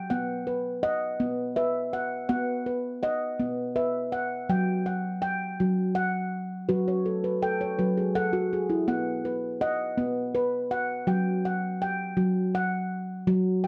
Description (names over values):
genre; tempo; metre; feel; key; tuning
world meditative, meditative tuned percussion; 55 BPM (dotted quarters); 6/8; straight; unclear; A4 = 440 Hz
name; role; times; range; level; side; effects
handpan; solo; 0.0-13.7 s; F#3 to G5; -28 LUFS; equal; none
room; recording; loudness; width
moderate studio reverb, RT60 0.6 s; cassette tape; -28 LUFS; mono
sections
0.0-13.3 A section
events
handpan fill 6.7-8.9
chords
0.1 B; 4.5 A13/F#; 8.9 B; 11.1 N.C.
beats
| 0.11 1.21 | 2.30 3.40 | 4.50 5.59 | 6.69 7.79 | 8.88 9.98 | 11.08 12.17 | 13.27